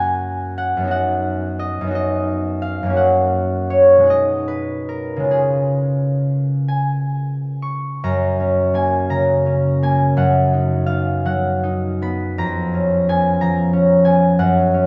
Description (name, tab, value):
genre	classical, solo harp piece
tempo	41-62 BPM (dotted quarters)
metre	6/8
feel	rubato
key	F# major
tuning	A4 = 440 Hz
part	concert harp	solo	0.0-14.9 s	E#2 to C#6	-18 LUFS	equal	none
room	wet church reverb, RT60 3.4 s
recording	dark, warm production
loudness	-18 LUFS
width	mono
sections	0.0-8.0 A section; 8.0-14.9 B section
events	none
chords	0.0 F#; 0.9 B/F#; 4.1 G#m/B; 5.3 C#; 8.0 F#; 10.2 B/F#; 12.4 C#7/E#